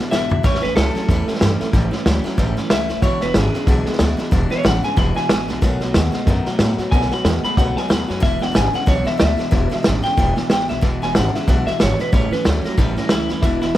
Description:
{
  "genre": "rockabilly",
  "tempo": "185 BPM",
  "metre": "4/4",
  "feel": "swing 59% on 8ths",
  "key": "E mixolydian",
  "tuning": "A4 = 443 Hz",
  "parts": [
    { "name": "picked steel-string acoustic guitar", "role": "accompaniment", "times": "0.0-13.8 s", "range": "E2 to F#4", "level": "-27 LUFS", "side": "left 2 dB", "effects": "none" },
    { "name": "electric guitar through a small old amp", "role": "riff", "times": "0.0-13.8 s", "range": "E2 to G#3", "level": "-25 LUFS", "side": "right 2 dB", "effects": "none" },
    { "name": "electric guitar through a small old amp", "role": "melody", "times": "0.1-13.8 s", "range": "E4 to B5", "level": "-23 LUFS", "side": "left 1 dB", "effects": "plate reverb, tape echo" },
    { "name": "upright bass", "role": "bass", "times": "0.1-13.7 s", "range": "E1 to A2", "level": "-22 LUFS", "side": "equal", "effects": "none" },
    { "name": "vintage drum kit", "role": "drums", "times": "0.1-13.8 s", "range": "hi-hat, kick drum, snare drum, toms", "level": "-19 LUFS", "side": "equal", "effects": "none" }
  ],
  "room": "light reverb",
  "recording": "none",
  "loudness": "-15 LUFS",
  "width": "side -14 dB against mid",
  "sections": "0.0-10.8 A section; 10.8-13.8 B section",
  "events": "drum fill 0.1-0.4; clean electric guitar solo 10.8-13.8",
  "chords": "0.4 A7; 3.0 E7; 5.6 B7; 8.2 E7; 12.1 A7"
}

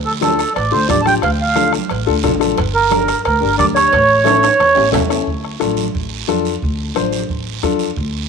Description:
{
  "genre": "latin, cumbia",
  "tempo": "178 BPM",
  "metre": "4/4",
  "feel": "straight",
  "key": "D harmonic minor, D minor from 5.3 s",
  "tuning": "A4 = 441 Hz",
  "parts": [
    { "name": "upright bass", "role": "bass", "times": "0.0-8.2 s", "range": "G1 to F2", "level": "-22 LUFS", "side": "equal", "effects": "none" },
    { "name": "mellow accordion", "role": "melody", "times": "0.1-4.9 s", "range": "A4 to A5", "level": "-14 LUFS", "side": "right 4 dB", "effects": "none" },
    { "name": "congas", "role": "percussion", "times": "0.1-7.8 s", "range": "none", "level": "-25 LUFS", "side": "right 13 dB", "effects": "none" },
    { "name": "dark upright piano", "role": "accompaniment", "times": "0.2-7.9 s", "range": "C#4 to C#5", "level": "-20 LUFS", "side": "left 14 dB", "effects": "none" },
    { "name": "bombo", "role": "percussion", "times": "0.2-8.1 s", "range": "none", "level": "-25 LUFS", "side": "left 2 dB", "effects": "none" },
    { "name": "guiro", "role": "percussion", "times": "0.2-8.3 s", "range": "none", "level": "-28 LUFS", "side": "right 16 dB", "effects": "none" },
    { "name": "cowbell and timbales", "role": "percussion", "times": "0.6-5.2 s", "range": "none", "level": "-25 LUFS", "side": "right 15 dB", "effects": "none" }
  ],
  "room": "light reverb, small room ambience",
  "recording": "1960s-style stereo with parts hard left and right",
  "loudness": "-13 LUFS",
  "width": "side -5 dB against mid",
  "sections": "0.0-5.3 A section; 5.3-8.3 B section",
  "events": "drum fill 4.3-5.3",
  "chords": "0.0 Dm; 2.6 Gm; 3.9 A; 5.3 Dm"
}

